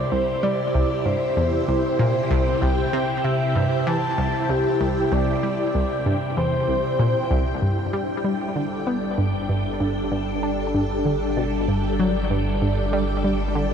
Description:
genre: ambient, sequencer-driven space music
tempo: 96 BPM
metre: 4/4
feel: straight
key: unclear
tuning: A4 = 440 Hz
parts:
  - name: breathy flute-like synth lead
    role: melody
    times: 0.0-7.3 s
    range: G4 to A5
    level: -26 LUFS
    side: equal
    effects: chorus, shimmer reverb, ping-pong delay
  - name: phased string machine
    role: sustained chords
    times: 0.0-13.7 s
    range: C3 to G5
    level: -24 LUFS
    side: equal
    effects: ensemble chorus, phaser, shimmer reverb
  - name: analog pluck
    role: riff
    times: 0.0-13.7 s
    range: C2 to D4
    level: -23 LUFS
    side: equal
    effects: chorus, ping-pong delay
  - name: round analog bass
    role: bass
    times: 7.6-13.7 s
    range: G1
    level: -29 LUFS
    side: equal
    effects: none
  - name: bubbling stepped-filter texture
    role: texture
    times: 7.6-13.7 s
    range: E4 to E5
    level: -46 LUFS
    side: right 1 dB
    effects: none
room: wet huge ambient reverb, RT60 7.4 s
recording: dark, warm production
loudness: -20 LUFS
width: side -7 dB against mid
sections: 0.0-7.6 A section; 7.6-13.7 B section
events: none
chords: 0.0 C; 7.6 Gsus2

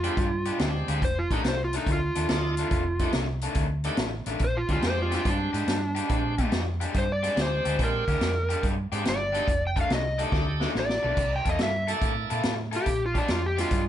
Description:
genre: electric blues shuffle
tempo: 142 BPM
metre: 4/4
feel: swing 68% on 8ths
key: unclear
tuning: A4 = 438 Hz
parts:
  - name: overdriven slide guitar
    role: melody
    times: 0.0-13.8 s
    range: D4 to G5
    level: -28 LUFS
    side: equal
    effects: none
  - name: bright tonewheel organ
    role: accompaniment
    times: 0.0-13.7 s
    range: Ab3 to A4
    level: -34 LUFS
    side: right 2 dB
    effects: slow rotary speaker, overdrive
  - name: overdriven electric guitar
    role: riff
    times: 0.0-13.8 s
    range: F2 to A4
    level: -32 LUFS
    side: left 3 dB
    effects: none
  - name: hollow-body short-scale fingered electric bass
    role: bass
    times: 0.0-13.9 s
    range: F1 to Bb2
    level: -30 LUFS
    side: equal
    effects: none
  - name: vintage drum kit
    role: drums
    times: 0.0-13.8 s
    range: crash cymbal, hi-hat, kick drum, snare drum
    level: -29 LUFS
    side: equal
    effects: none
room: light reverb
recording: band playing live in one room, nothing above 10.9 kHz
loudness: -24 LUFS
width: side -11 dB against mid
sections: 0.0-13.9 A section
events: drum fill 10.3-11.2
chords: 0.0 Bb13; 1.0 F13; 4.4 Bb13; 9.5 F13; 11.2 C13; 12.9 Bb13

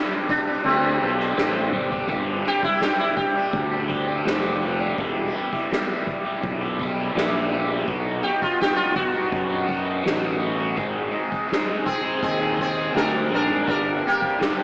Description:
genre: psychedelic rock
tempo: 83 BPM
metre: 4/4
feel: straight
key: unclear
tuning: A4 = 441 Hz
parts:
  - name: overdriven electric guitar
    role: riff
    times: 0.0-14.6 s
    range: E2 to Ab4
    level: -25 LUFS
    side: equal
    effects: phaser, dub echo
  - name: sitar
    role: melody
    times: 0.3-3.9, 8.2-14.4 s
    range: Bb3 to Bb4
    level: -24 LUFS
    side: equal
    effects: dub echo
  - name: soft-mallet drum kit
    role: drums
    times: 0.3-14.6 s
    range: crash cymbal, kick drum, snare drum, toms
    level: -27 LUFS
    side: equal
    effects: none
  - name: fuzz fingered electric bass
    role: bass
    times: 0.6-14.0 s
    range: E1 to F#2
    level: -27 LUFS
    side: equal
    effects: overdrive
  - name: tanpura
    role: drone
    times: 2.1-14.6 s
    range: G2 to G3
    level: -36 LUFS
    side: equal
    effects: none
room: light reverb, studio reverb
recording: echo-heavy mix, AM radio sound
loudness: -20 LUFS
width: side -28 dB against mid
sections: 0.0-2.1 A section; 2.1-14.6 B section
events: drum fill 1.7-2.1; sitar solo 2.1-14.6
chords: 0.0 Gsus4; 5.0 Em7; 7.9 B; 10.8 Ab; 13.7 Gsus4

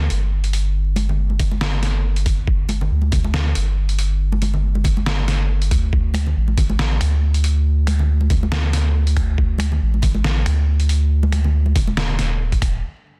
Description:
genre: deep dubstep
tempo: 139 BPM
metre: 4/4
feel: swing 56% on 16ths, half-time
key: unclear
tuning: A4 = 440 Hz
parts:
  - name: soft dub sub bass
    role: bass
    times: 0.0-12.8 s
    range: Eb1 to D2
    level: -20 LUFS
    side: equal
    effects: none
  - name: trip hop sampler-style drum kit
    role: drums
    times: 0.1-12.7 s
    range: finger snaps, hi-hat, snare drum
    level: -28 LUFS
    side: equal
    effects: low-pass filter on hats, low-pass filter on snare, low-pass filter on room
  - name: congas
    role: percussion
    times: 1.0-12.0 s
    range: none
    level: -30 LUFS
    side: equal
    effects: none
  - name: electronic kick drum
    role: drums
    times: 1.4-12.7 s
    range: none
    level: -22 LUFS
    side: equal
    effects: none
  - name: dark analog pad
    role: sustained chords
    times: 12.8-13.2 s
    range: G3 to A4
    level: -62 LUFS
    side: equal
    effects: chorus
room: little or no reverb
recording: dense, heavily limited modern master, vinyl crackle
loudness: -19 LUFS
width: mono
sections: 0.0-12.8 A section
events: none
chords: 0.0 G5; 5.9 D5

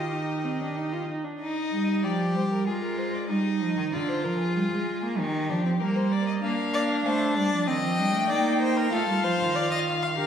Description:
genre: classical, baroque-style fugue for string quartet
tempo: 96 BPM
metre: 4/4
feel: straight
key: Eb major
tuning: A4 = 439 Hz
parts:
  - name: rich violin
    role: melody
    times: 0.0-10.3 s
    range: G4 to A5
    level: -32 LUFS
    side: left 4 dB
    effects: none
  - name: clear violin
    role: second line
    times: 0.0-10.3 s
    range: Bb3 to F5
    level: -30 LUFS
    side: left 1 dB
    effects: none
  - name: rich viola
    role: accompaniment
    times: 0.0-1.4, 6.4-10.3 s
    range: C4 to G4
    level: -29 LUFS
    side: right 2 dB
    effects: none
  - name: rich cello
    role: bass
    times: 0.0-10.3 s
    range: D3 to Bb3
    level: -27 LUFS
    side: right 1 dB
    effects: none
room: wet recital hall reverb, RT60 1.5 s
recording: heard from further back in the room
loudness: -24 LUFS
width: side -8 dB against mid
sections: 0.0-1.4 A section; 1.4-10.3 B section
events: none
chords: 0.0 Eb; 2.7 Fm7/Ab; 3.9 Bb/D; 5.2 Eb; 6.4 Bb; 7.7 Cm7/Eb; 8.9 F

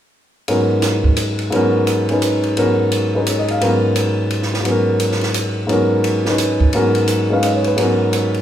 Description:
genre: modal jazz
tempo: 172 BPM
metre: 3/4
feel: swing 62% on 8ths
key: G# minor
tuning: A4 = 440 Hz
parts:
  - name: warm grand piano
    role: accompaniment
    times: 0.5-8.4 s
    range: G#2 to E#5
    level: -15 LUFS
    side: equal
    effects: none
  - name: compact cocktail drum kit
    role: drums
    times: 0.5-8.4 s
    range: hi-hat, kick drum, ride cymbal, snare drum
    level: -22 LUFS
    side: right 2 dB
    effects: none
room: wet large studio reverb, RT60 0.9 s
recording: band playing live in one room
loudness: -14 LUFS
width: side -10 dB against mid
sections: 0.5-8.4 A section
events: none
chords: 0.5 G#m11

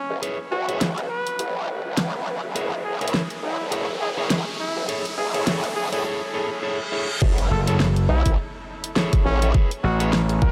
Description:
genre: glitch hop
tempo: 103 BPM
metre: 4/4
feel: swing 57% on 16ths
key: F# minor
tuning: A4 = 440 Hz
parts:
  - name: warm trumpet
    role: melody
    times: 0.0-10.5 s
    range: C#4 to B4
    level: -32 LUFS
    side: equal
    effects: vintage 12-bit sampler grit, diffuse ambient delay
  - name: riser, reverse cymbal and impact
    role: sound effects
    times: 0.5-9.5 s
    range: none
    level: -36 LUFS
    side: equal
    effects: none
  - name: growl bass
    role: bass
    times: 0.1-10.5 s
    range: E1 to E2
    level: -28 LUFS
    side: equal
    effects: chorus, tube saturation, high-pass filter
  - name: electric guitar at the edge of break-up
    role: stabs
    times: 0.2-10.2 s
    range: E4 to C#5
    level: -32 LUFS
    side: equal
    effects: vintage 12-bit sampler grit, sidechain pumping, diffuse ambient delay
  - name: pop drum kit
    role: drums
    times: 0.2-10.4 s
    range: crash cymbal, hi-hat, rim click, snare drum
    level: -30 LUFS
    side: equal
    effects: overdrive
  - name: electronic kick drum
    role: drums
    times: 7.2-10.5 s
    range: none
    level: -21 LUFS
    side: equal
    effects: overdrive
  - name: gritty slap bass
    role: bass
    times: 7.5-10.4 s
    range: F#1 to A1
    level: -22 LUFS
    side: equal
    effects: overdrive
room: moderate huge ambient reverb, RT60 6.9 s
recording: dreamy mix soaked in reverb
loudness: -23 LUFS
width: mono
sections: 0.0-7.2 A section; 7.2-10.5 B section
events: build-up 0.0-7.2; riser 1.1-6.1; reverse cymbal 6.1-7.2; drop 7.2-10.5; impact 7.2-9.5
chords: 0.2 Amaj7; 2.6 F#7; 4.9 Bm7 (rootless); 7.2 F#m9; 9.5 Amaj7

